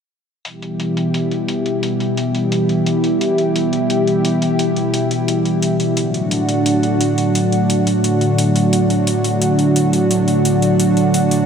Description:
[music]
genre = synthwave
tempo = 87 BPM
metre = 4/4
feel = straight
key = unclear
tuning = A4 = 440 Hz
[part]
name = lush unison pad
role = sustained chords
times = 0.4-11.5 s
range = A2 to G4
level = -14 LUFS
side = equal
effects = chorus
[part]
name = electronic hi-hat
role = drums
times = 0.5-11.5 s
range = none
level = -25 LUFS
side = left 1 dB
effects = overdrive, low-pass filter on hats
[sound]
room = wet plate reverb, RT60 3.4 s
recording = bright 1980s-style digital production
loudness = -14 LUFS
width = side -7 dB against mid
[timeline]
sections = 0.5-11.5 A section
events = none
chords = 0.5 Em; 6.0 D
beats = | 0.45 1.14 1.83 2.52 | 3.21 3.90 4.59 5.28 | 5.97 6.66 7.35 8.04 | 8.73 9.42 10.11 10.80

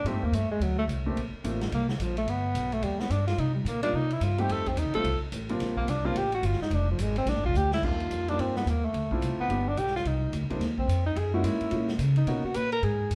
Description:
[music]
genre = jazz, small-group swing and bop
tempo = 216 BPM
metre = 4/4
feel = swing 62% on 8ths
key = Bb major, Eb major from 7.8 s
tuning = A4 = 440 Hz
[part]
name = breathy tenor saxophone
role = melody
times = 0.0-13.1 s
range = D3 to B4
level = -32 LUFS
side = equal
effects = none
[part]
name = upright bass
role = bass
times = 0.0-13.2 s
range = F1 to Db3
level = -31 LUFS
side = equal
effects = none
[part]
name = warm baby grand piano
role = accompaniment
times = 0.1-1.6, 3.8-12.4 s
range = G3 to G4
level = -35 LUFS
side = equal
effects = none
[part]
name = swinging big-band drum kit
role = drums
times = 0.1-13.2 s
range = crash cymbal, hi-hat, kick drum, ride cymbal, snare drum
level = -40 LUFS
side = equal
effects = none
[sound]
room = wet studio reverb, RT60 0.8 s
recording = heard from further back in the room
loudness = -28 LUFS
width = mono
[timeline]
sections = 0.0-7.8 A section; 7.8-13.2 A section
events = tenor saxophone solo 0.0-13.2; drum fill 7.5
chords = 0.1 Am7b5; 0.6 D5; 1.2 Bbmaj9/A; 2.3 G; 3.4 Cm7; 4.5 F7; 5.6 Bb69; 6.7 Fm; 7.3 Bb7; 7.8 Ebmaj7; 8.9 Dm7; 9.5 G; 10.0 Cm9; 11.2 Gb13; 12.3 Bmaj9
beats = | 0.05 0.33 0.61 0.88 | 1.16 1.44 1.72 1.99 | 2.27 2.55 2.83 3.10 | 3.38 3.66 3.94 4.21 | 4.49 4.77 5.04 5.32 | 5.60 5.88 6.16 6.43 | 6.71 6.99 7.26 7.54 | 7.82 8.10 8.38 8.65 | 8.93 9.21 9.49 9.77 | 10.05 10.32 10.60 10.88 | 11.16 11.44 11.71 11.99 | 12.27 12.55 12.83 13.11

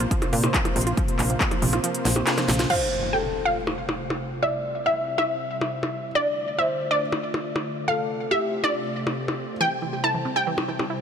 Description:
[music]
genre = uplifting trance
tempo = 139 BPM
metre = 4/4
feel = straight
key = F major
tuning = A4 = 441 Hz
[part]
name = lush unison pad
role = sustained chords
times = 0.0-11.0 s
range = C3 to D5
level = -31 LUFS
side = equal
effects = chorus, sidechain pumping
[part]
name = wide unison pluck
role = arpeggios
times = 0.0-2.7, 9.6-11.0 s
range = C3 to F4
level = -30 LUFS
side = right 4 dB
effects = sidechain pumping, tape echo
[part]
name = tight sequencer bass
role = bass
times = 0.0-2.7 s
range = Bb1 to Bb2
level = -24 LUFS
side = equal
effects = tube saturation, sidechain pumping
[part]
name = techno drum kit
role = drums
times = 0.0-10.9 s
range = crash cymbal, handclaps, hi-hat, percussion blips, snare drum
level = -27 LUFS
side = equal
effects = overdrive, sidechain pumping on hats, sidechain pumping on perc, sidechain pumping on cymbals
[part]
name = electronic kick drum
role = drums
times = 0.1-1.5 s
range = none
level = -25 LUFS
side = equal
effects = overdrive
[part]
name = wide unison pluck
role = melody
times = 2.7-11.0 s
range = D5 to A5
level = -26 LUFS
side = equal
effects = sidechain pumping, tape echo
[part]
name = felt-muted upright piano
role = second line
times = 2.7-9.5 s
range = G4 to E5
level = -29 LUFS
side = left 1 dB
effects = tape echo
[part]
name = impact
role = sound effects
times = 2.7-4.4 s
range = none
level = -34 LUFS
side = equal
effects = none
[sound]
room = moderate huge ambient reverb, RT60 6.1 s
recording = none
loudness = -22 LUFS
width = side -7 dB against mid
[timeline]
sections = 0.0-2.7 A section; 2.7-11.0 B section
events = kick drops out 1.8-2.7; drum fill 2.1-2.7; band accent 2.6; impact 2.7-4.4; filter sweep on synth pluck 2.7-11.0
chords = 0.0 Bbsus2; 2.7 F; 4.4 C; 6.2 Dm; 7.9 F; 9.6 C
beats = 0.11 0.54 | 0.97 1.41 1.84 2.27 | 2.70 3.13 3.56 4.00 | 4.43 4.86 5.29 5.72 | 6.15 6.59 7.02 7.45 | 7.88 8.31 8.74 9.18 | 9.61 10.04 10.47 10.90

